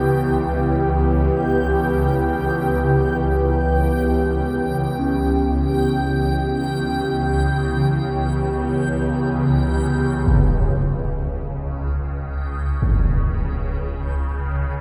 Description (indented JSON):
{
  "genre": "dark ambient drone",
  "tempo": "free time",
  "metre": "none",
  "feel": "none",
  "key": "unclear",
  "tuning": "A4 = 440 Hz",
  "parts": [
    { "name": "sweeping resonant pad", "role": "sustained chords", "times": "0.0-10.3 s", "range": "E3 to G4", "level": "-24 LUFS", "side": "equal", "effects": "chorus" },
    { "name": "gamelan-type bossed gongs", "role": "arpeggios", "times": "0.0-14.8 s", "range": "C#2 to C#4", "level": "-35 LUFS", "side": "equal", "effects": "none" },
    { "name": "swarming drone", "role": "drone", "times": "0.0-14.8 s", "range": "C#2 to C#3", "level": "-24 LUFS", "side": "equal", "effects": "built-in reverb, phaser" },
    { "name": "backwards swelling texture", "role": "texture", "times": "0.0-14.8 s", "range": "G5", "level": "-32 LUFS", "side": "equal", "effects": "built-in reverb, subtle chorus" },
    { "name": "impact", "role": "percussion", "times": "10.3-13.1 s", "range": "none", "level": "-25 LUFS", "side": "equal", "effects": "low-pass filter on sfx" }
  ],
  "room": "wet lush hall reverb, RT60 3.0 s",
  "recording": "dreamy mix soaked in reverb",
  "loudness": "-20 LUFS",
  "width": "mono",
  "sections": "0.0-10.3 A section; 10.3-14.8 B section",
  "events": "none",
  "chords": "0.0 Em/C#; 10.3 C#m"
}